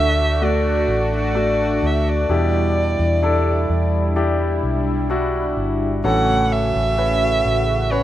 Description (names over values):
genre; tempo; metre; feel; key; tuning
pop ballad; 64 BPM; 4/4; straight; E dorian; A4 = 443 Hz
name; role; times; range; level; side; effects
warm violin; melody; 0.0-8.0 s; C#5 to F#5; -21 LUFS; right 2 dB; none
warm concert grand piano; accompaniment; 0.0-8.0 s; A2 to B4; -22 LUFS; left 2 dB; none
sweeping resonant pad; sustained chords; 0.0-8.0 s; C#3 to F#4; -24 LUFS; equal; chorus, tremolo
hollow-body short-scale fingered electric bass; bass; 0.0-8.0 s; G1 to E2; -21 LUFS; equal; none
room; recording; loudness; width
light reverb, small room ambience; rough home demo mix; -16 LUFS; side -12 dB against mid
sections
0.0-8.0 A section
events
none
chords
0.0 D; 2.3 Em7; 6.0 A6